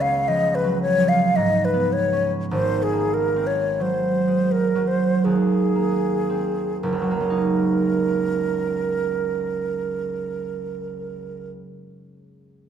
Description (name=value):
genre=classical, impressionist duo for flute and harp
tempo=37-56 BPM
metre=3/4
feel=rubato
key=F# major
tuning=A4 = 441 Hz
part: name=mellow hollow concert flute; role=melody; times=0.0-11.5 s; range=G#4 to E#5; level=-22 LUFS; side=equal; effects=none
part: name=concert harp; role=accompaniment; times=0.0-12.0 s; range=F#1 to D#4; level=-23 LUFS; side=right 3 dB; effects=none
room=wet recital hall reverb, RT60 1.5 s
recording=none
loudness=-19 LUFS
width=side -8 dB against mid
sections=0.0-6.8 A section; 6.8-11.5 B section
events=slowing down 0.0-6.8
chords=0.0 C#6; 2.5 G#9; 6.8 F#6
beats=0.27 1.36 | 2.52 3.81 5.24 | 6.82 8.36 9.95